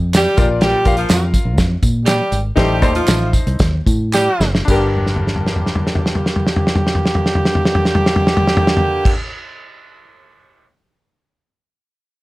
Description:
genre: uptempo 1960s-style soul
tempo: 106-126 BPM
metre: 4/4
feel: straight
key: G minor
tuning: A4 = 440 Hz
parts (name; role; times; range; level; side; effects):
- fingered electric bass; bass; 0.0-9.1 s; F#1 to Bb2; -19 LUFS; equal; none
- warm soul drum kit; drums; 0.1-10.7 s; crash cymbal, hi-hat, kick drum, snare drum, toms; -16 LUFS; equal; none
- handclaps and tambourine; percussion; 0.1-9.1 s; none; -27 LUFS; right 3 dB; none
- warm horn section; second line; 0.2-9.1 s; D3 to G4; -18 LUFS; right 1 dB; none
- clear concert grand piano; accompaniment; 0.4-9.1 s; G2 to F5; -22 LUFS; left 3 dB; none
room: light reverb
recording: none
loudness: -13 LUFS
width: side -19 dB against mid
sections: 0.0-4.7 A section; 4.7-9.2 B section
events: slowing down 0.6-4.7; drum fill 4.1-4.7, 5.0-9.0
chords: 0.4 Bb; 2.6 Adim; 4.7 Gm

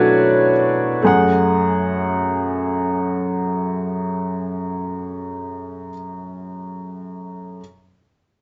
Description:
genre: pop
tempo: free time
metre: none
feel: none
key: unclear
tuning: A4 = 437 Hz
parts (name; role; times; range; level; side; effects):
- warm upright piano; solo; 0.0-7.6 s; F#2 to F#5; -20 LUFS; equal; none
room: light reverb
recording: dark, warm production, nothing above 7.7 kHz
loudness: -19 LUFS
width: mono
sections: 0.0-1.0 A section; 1.0-5.1 B section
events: upright piano solo 0.0-1.0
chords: 0.0 Bm; 1.0 F#madd9

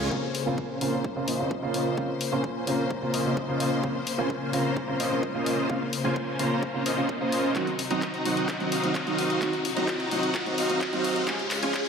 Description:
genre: EDM, festival progressive house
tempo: 129 BPM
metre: 4/4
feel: straight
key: Bb minor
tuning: A4 = 440 Hz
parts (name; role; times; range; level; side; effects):
- dark concert grand piano; accompaniment; 0.0-11.7 s; Db3 to C5; -29 LUFS; right 2 dB; lush chorus, sidechain pumping, ping-pong delay
- rich studio string section; sustained chords; 0.0-11.9 s; C3 to C5; -33 LUFS; left 4 dB; sidechain pumping
- dense compressed supersaw; riff; 0.0-11.9 s; Ab3 to Bb5; -29 LUFS; equal; sidechain pumping, low-pass filter, ping-pong delay
- riser; sound effects; 0.0-11.9 s; none; -36 LUFS; left 1 dB; none
- electronic kick drum; drums; 0.1-11.8 s; none; -36 LUFS; left 1 dB; high-pass filter on kick
- house drum kit; drums; 0.3-11.9 s; handclaps, hi-hat; -34 LUFS; left 2 dB; high-pass filter on snare, high-pass filter on hats
room: wet plate reverb, RT60 1.4 s, digital ambience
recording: dreamy mix soaked in reverb, high-pass filter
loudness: -24 LUFS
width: side -6 dB against mid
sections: 0.1-11.9 A section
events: build-up 0.1-11.9; riser 0.1-11.9; filter sweep on supersaw synth 0.1-11.9; filter sweep 0.1-11.9; drum fill 7.6-11.9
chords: 0.1 Bbmadd9; 7.6 Cdim; 11.3 Db

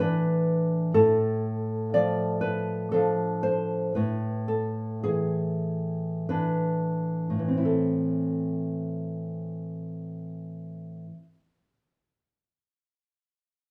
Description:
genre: romantic piece for solo classical guitar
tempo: 41-63 BPM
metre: 3/4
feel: rubato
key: A minor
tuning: A4 = 442 Hz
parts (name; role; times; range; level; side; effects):
- nylon-string guitar; solo; 0.0-11.4 s; A2 to D5; -28 LUFS; equal; none
room: moderate large studio reverb, RT60 0.9 s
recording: band playing live in one room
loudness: -27 LUFS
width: mono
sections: 0.0-7.7 A section; 7.7-11.4 B section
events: slowing down 0.0-7.7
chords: 0.0 E7(no3)/A; 0.9 Dm/A; 4.0 E7/A; 7.7 Am

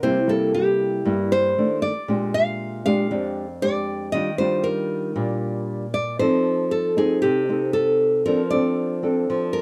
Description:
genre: bossa nova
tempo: 117 BPM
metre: 4/4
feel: straight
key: unclear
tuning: A4 = 441 Hz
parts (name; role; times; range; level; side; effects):
- nylon-string guitar; melody; 0.0-9.6 s; G4 to F5; -24 LUFS; equal; none
- nylon-string guitar; accompaniment; 0.0-9.6 s; F2 to A4; -25 LUFS; equal; none
room: little or no reverb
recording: dry, close 1970s-style studio recording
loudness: -22 LUFS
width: mono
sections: 0.0-9.6 A section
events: none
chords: 0.0 C7; 1.6 Cm69/Eb; 2.1 Bb6; 4.1 Ebmaj9; 6.2 F7; 8.2 Bbmaj9/F

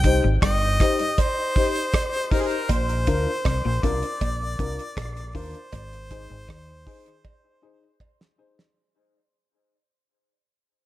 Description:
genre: dub reggae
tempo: 79 BPM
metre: 4/4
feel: straight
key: unclear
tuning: A4 = 440 Hz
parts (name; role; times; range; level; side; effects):
- clear harmonica; melody; 0.0-8.0 s; Ab4 to G5; -27 LUFS; equal; dub echo
- dark upright piano; stabs; 0.0-8.6 s; D4 to C5; -28 LUFS; left 4 dB; dub echo
- deep dub fingered electric bass; bass; 0.0-6.8 s; G1 to Eb2; -26 LUFS; equal; none
- damped 70s drum kit; drums; 0.0-8.8 s; hi-hat, kick drum, rim click, snare drum; -24 LUFS; equal; none
- clean electric guitar; riff; 0.2-6.7 s; G2 to Eb3; -32 LUFS; left 3 dB; analog chorus, dub echo
- cowbell; percussion; 0.4-8.2 s; none; -36 LUFS; right 8 dB; dub echo
room: light reverb, studio reverb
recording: none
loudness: -21 LUFS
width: side -15 dB against mid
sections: 0.0-8.8 A section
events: fade-out 0.0-8.8; drum fill 7.2-8.8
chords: 0.0 Cm; 2.7 Bb; 5.7 Ab

